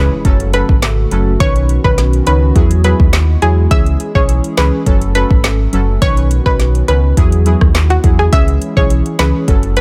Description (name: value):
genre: dancehall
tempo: 104 BPM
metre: 4/4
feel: straight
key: C# minor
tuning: A4 = 440 Hz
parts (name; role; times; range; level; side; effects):
- analog pluck; melody; 0.0-9.8 s; F#4 to E5; -21 LUFS; equal; chorus, tape echo
- synth brass stab; accompaniment; 0.0-9.8 s; D#3 to B4; -21 LUFS; equal; chorus
- hollow soft pad; sustained chords; 0.0-9.8 s; C#3 to A4; -26 LUFS; equal; chorus, sidechain pumping
- sub bass with octave; bass; 0.0-9.8 s; F#1 to E2; -15 LUFS; equal; none
- impact; sound effects; 0.1-1.4 s; none; barely audible; none; none
- afro-pop drum kit; drums; 0.2-9.8 s; handclaps, hi-hat, kick drum, rim click, snare drum; -15 LUFS; equal; none
room: little or no reverb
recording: none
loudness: -12 LUFS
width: mono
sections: 0.0-9.8 A section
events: impact 0.0-1.4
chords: 0.2 F#m; 1.4 Badd9; 2.6 Eadd9; 3.7 C#m; 4.9 F#m; 6.0 Badd9; 7.2 Eadd9; 8.3 C#m